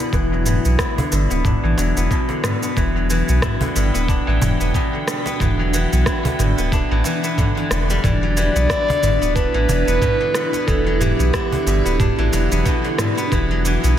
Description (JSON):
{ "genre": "organic downtempo", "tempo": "91 BPM", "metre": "4/4", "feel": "swing 57% on 16ths", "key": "E minor", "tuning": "A4 = 440 Hz", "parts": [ { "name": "granular cloud pad", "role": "sustained chords", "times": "0.0-14.0 s", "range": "D4 to G5", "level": "-26 LUFS", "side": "right 1 dB", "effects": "built-in reverb, sidechain pumping" }, { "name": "steel-string zither", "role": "arpeggios", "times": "0.0-14.0 s", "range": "B2 to E4", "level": "-22 LUFS", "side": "left 2 dB", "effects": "low-pass filter, tape echo" }, { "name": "organic electronic drum kit", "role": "drums", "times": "0.0-13.9 s", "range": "rim click, shaker, toms", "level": "-24 LUFS", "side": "right 1 dB", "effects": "dub echo" }, { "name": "warm sub bass", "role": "bass", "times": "0.1-14.0 s", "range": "D1 to B1", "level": "-19 LUFS", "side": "equal", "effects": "sidechain pumping" }, { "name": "electronic kick drum", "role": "drums", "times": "0.1-13.5 s", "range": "none", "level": "-22 LUFS", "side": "equal", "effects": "none" }, { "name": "cajon", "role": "percussion", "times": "1.0-13.0 s", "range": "none", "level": "-27 LUFS", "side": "right 2 dB", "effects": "dub echo" }, { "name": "mellow clarinet", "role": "melody", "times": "8.0-13.0 s", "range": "G4 to D5", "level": "-22 LUFS", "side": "right 1 dB", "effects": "vintage 12-bit sampler grit, tape echo" } ], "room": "light reverb", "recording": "echo-heavy mix", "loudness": "-16 LUFS", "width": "side -10 dB against mid", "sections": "0.0-14.0 A section", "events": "filter sweep on guzheng 0.0-14.0", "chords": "0.0 Em7", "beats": "| 0.13 0.79 1.45 2.11 | 2.77 3.42 4.08 4.74 | 5.40 6.06 6.72 7.38 | 8.04 8.70 9.36 10.02 | 10.68 11.34 12.00 12.66 | 13.31 13.97" }